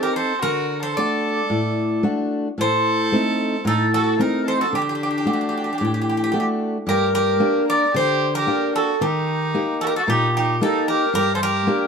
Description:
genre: greek folk, Greek bouzouki band.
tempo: 112 BPM.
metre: 4/4.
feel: straight.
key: G harmonic minor.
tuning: A4 = 440 Hz.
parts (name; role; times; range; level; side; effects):
Greek bouzouki; melody; 0.0-11.9 s; G4 to D5; -22 LUFS; right 1 dB; none.
rich violin; second line; 0.0-11.9 s; D4 to Bb4; -25 LUFS; right 2 dB; none.
fingerpicked steel-string acoustic guitar; accompaniment; 0.0-11.9 s; G2 to G4; -22 LUFS; left 1 dB; none.
room: moderate studio reverb, RT60 0.6 s.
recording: dark, warm production.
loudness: -18 LUFS.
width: side -6 dB against mid.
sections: 0.0-6.9 A section; 6.9-11.9 B section.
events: none.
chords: 0.4 D; 2.6 Adim; 4.7 D; 6.9 Gm; 9.0 Eb; 11.1 Gm.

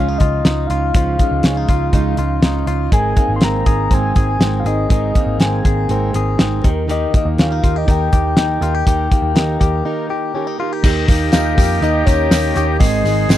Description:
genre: jangly indie pop.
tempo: 121 BPM.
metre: 4/4.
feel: straight.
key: unclear.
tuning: A4 = 440 Hz.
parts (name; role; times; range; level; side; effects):
soft octave-layered synth lead; melody; 0.0-13.4 s; Db5 to C6; -22 LUFS; left 3 dB; chorus.
fingerpicked plugged-in steel-string acoustic guitar; accompaniment; 0.0-13.4 s; Ab2 to Bb4; -23 LUFS; right 10 dB; none.
direct-recorded clean electric guitar; arpeggios; 0.0-13.4 s; Eb3 to Ab4; -23 LUFS; left 7 dB; none.
vintage muted picked electric bass; bass; 0.0-13.4 s; Ab1 to F2; -19 LUFS; equal; none.
cloth-damped thuddy drum kit; drums; 0.2-13.4 s; crash cymbal, hi-hat, kick drum, snare drum; -14 LUFS; equal; none.
warm trumpet; second line; 10.8-13.4 s; G4 to Ab4; -26 LUFS; right 9 dB; none.
combo organ; accompaniment; 10.8-13.4 s; Bb3 to C5; -23 LUFS; left 12 dB; none.
tambourine; percussion; 10.9-13.4 s; none; -33 LUFS; right 19 dB; none.
room: little or no reverb.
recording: dry, close 1970s-style studio recording.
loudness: -13 LUFS.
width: side -12 dB against mid.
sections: 0.0-10.8 A section; 10.8-13.4 B section.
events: break 9.9-10.8.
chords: 0.0 Dbadd9; 2.9 Abadd9; 6.6 Eb; 12.8 Ab.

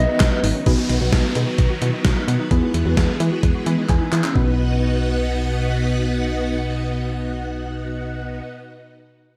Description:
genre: synth-pop.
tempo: 130 BPM.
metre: 4/4.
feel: straight.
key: B major.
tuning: A4 = 440 Hz.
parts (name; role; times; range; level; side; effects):
mellow FM electric piano; accompaniment; 0.0-8.4 s; F#3 to G#5; -30 LUFS; equal; chorus, phaser.
string machine, violins; sustained chords; 0.0-8.4 s; B2 to F#5; -27 LUFS; equal; ensemble chorus.
warbly dusty pluck; arpeggios; 0.0-8.5 s; B3 to B4; -32 LUFS; equal; chorus, delay.
solid FM bass; bass; 0.0-8.4 s; G#1 to E3; -25 LUFS; equal; none.
gated 80s digital drum machine; drums; 0.2-4.5 s; handclaps, hi-hat, kick drum, snare drum; -22 LUFS; equal; gated reverb, gated reverb snare.
downlifter; sound effects; 0.7-4.4 s; none; -35 LUFS; equal; none.
room: moderate plate reverb, RT60 1.2 s.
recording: dreamy mix soaked in reverb.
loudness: -20 LUFS.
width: mono.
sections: 0.7-4.4 A section; 4.4-8.0 B section.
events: FM electric piano fill 3.7-4.4; drum fill 3.9-4.4.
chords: 0.0 B; 2.5 E; 4.4 B.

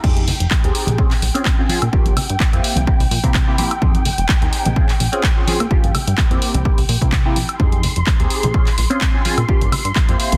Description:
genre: filtered disco house.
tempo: 127 BPM.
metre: 4/4.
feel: swing 54% on 16ths.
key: F minor.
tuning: A4 = 440 Hz.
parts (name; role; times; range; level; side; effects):
funky polysynth comp; accompaniment; 0.0-10.4 s; Bb3 to C5; -26 LUFS; equal; chorus, phaser, sidechain pumping, low-pass filter.
dark symphonic string section; sustained chords; 0.0-10.4 s; G5 to C6; -30 LUFS; equal; sidechain pumping, low-pass filter.
plucky analog bass; bass; 0.0-10.4 s; F1 to C3; -23 LUFS; equal; sidechain pumping, low-pass filter.
electronic kick drum; drums; 0.0-10.1 s; none; -19 LUFS; equal; none.
punchy analog drum machine; drums; 0.0-10.4 s; crash cymbal, handclaps, hi-hat, woodblock; -25 LUFS; equal; none.
maracas and congas; percussion; 0.0-10.4 s; none; -28 LUFS; equal; sidechain pumping on perc, low-pass filter on perc.
room: digital ambience.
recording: dense, heavily limited modern master.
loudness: -17 LUFS.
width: mono.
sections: 0.0-10.4 A section.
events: filter sweep 0.0-10.4.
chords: 0.0 Fm7; 1.0 Bbm7; 1.9 Gm7b5; 2.6 C7; 3.8 Fm7; 4.8 Bbm7; 5.7 Gm7b5; 6.4 C7; 7.6 Fm7; 8.5 Bbm7; 9.5 Gm7b5.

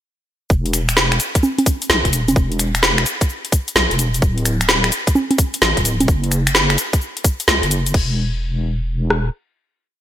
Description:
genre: UK garage, two-step garage.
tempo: 129 BPM.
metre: 4/4.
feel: swing 66% on 16ths.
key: unclear.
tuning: A4 = 440 Hz.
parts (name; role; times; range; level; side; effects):
deep soft wobble bass; bass; 0.5-9.3 s; D1 to C#2; -19 LUFS; equal; chorus.
garage drum kit; drums; 0.5-9.2 s; kick drum, rim click; -16 LUFS; equal; none.
garage drum kit; drums; 0.5-8.1 s; congas, crash cymbal, finger snaps, hi-hat, shaker, snare drum; -16 LUFS; equal; gated reverb.
room: light reverb, digital ambience.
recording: bright 1980s-style digital production.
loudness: -15 LUFS.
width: side -11 dB against mid.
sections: 0.5-7.9 drop; 7.9-10.0 final note.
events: drop 0.5-7.9.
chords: none.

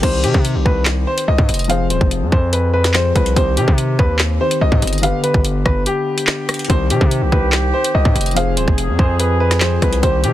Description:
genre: hip hop, drill.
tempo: 144 BPM.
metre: 4/4.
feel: half-time.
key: C harmonic minor.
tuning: A4 = 440 Hz.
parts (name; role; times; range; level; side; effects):
warm upright piano; melody; 0.0-10.3 s; G4 to F5; -21 LUFS; equal; low-pass filter.
dark grand piano; accompaniment; 0.0-10.3 s; D3 to C5; -22 LUFS; left 4 dB; low-pass filter.
distorted 808-style bass; bass; 0.0-10.3 s; Eb1 to C3; -17 LUFS; equal; distortion.
drill drum kit; drums; 0.0-10.3 s; crash cymbal, handclaps, hi-hat, kick drum, rim click, snare drum; -17 LUFS; equal; none.
mellow brass ensemble; sustained chords; 6.7-10.3 s; Eb3 to Ab4; -23 LUFS; right 2 dB; stereo widening.
room: little or no reverb.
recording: dense, heavily limited modern master.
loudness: -13 LUFS.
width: side -13 dB against mid.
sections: 0.0-10.3 A section.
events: break 5.9-6.7.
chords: 0.0 Cm; 1.7 Fm; 3.4 Cm; 5.0 G; 6.7 Cm; 8.4 Fm.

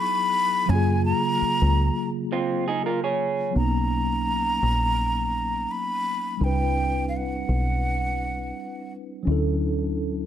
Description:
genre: R&B, neo-soul.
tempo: 84 BPM.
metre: 4/4.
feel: straight.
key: unclear.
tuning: A4 = 441 Hz.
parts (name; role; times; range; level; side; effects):
breathy jazz flute; melody; 0.0-8.9 s; E#5 to B5; -25 LUFS; equal; slapback echo, plate reverb.
mellow tine electric piano; accompaniment; 0.0-10.3 s; C#3 to B4; -28 LUFS; left 1 dB; medium stereo tremolo.
deep dub fingered electric bass; bass; 0.7-10.3 s; A#1 to F#2; -24 LUFS; equal; none.
electric guitar through a small old amp; second line; 2.3-3.5 s; C4 to C#5; -25 LUFS; right 5 dB; plate reverb.
room: moderate studio ambience, RT60 0.5 s.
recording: dark, warm production.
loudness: -22 LUFS.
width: side -10 dB against mid.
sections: 0.0-3.5 A section; 3.5-10.3 B section.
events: none.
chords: 0.0 Emaj9; 0.7 F#maj9; 3.5 Bmaj9; 6.4 Cmaj9; 9.3 Dmaj9.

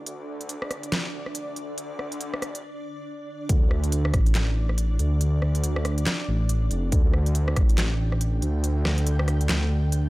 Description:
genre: deep dubstep.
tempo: 140 BPM.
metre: 4/4.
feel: swing 60% on 16ths, half-time.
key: unclear.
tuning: A4 = 440 Hz.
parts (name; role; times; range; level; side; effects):
granular cloud pad; sustained chords; 0.0-10.1 s; D4 to G5; -36 LUFS; right 1 dB; built-in reverb.
dark detuned saw bass; bass; 0.0-10.1 s; F1 to D2; -24 LUFS; equal; tube saturation, high-pass filter.
dubstep drum kit; drums; 0.1-10.0 s; handclaps, hi-hat, rim click, snare drum; -29 LUFS; equal; none.
electronic kick drum; drums; 3.5-4.2, 6.9-7.7 s; none; -21 LUFS; equal; none.
room: little or no reverb.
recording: dry, gritty hardware recording.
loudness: -22 LUFS.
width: side -19 dB against mid.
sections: 0.0-3.5 A section; 3.5-10.1 B section.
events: build-up 0.0-3.5; break 2.6-3.5; drop 3.5-10.1.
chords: 0.0 N.C.; 3.5 D5.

